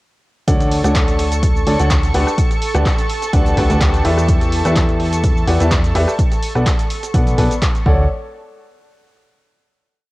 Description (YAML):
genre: piano house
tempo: 126 BPM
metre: 4/4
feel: swing 54% on 16ths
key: D major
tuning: A4 = 440 Hz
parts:
  - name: analog string pad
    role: sustained chords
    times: 0.5-7.9 s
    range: A4 to C#6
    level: -24 LUFS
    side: right 2 dB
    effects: ensemble chorus, vintage 12-bit sampler grit, sidechain pumping, cassette tape
  - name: clear grand piano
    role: riff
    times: 0.5-8.0 s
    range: E3 to A5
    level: -20 LUFS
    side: left 1 dB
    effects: sidechain pumping, cassette tape
  - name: plucky analog bass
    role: bass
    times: 0.5-8.1 s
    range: B1 to E2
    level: -17 LUFS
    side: equal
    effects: tube saturation, sidechain pumping
  - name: breakbeat sampler-style drum kit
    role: drums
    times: 0.5-7.7 s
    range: hi-hat, snare drum, tambourine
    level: -33 LUFS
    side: equal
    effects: none
  - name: electronic kick drum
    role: drums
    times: 0.5-8.0 s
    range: none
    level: -16 LUFS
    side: equal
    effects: cassette tape
  - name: punchy analog drum machine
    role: drums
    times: 0.5-7.8 s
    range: cabasa, handclaps, hi-hat, rim click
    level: -25 LUFS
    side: equal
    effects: cassette tape
room: little or no reverb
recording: home recording on cassette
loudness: -13 LUFS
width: side -19 dB against mid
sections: 0.5-8.1 drop; 8.1-10.0 final hit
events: drop 0.5-8.1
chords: 0.5 Dmaj7; 2.1 Gmaj7/D; 4.3 Em7; 6.2 Bm7; 7.9 Dmaj7; 8.1 N.C.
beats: | 0.48 0.95 1.43 1.91 | 2.38 2.86 3.33 3.81 | 4.29 4.76 5.24 5.71 | 6.19 6.67 7.14 7.62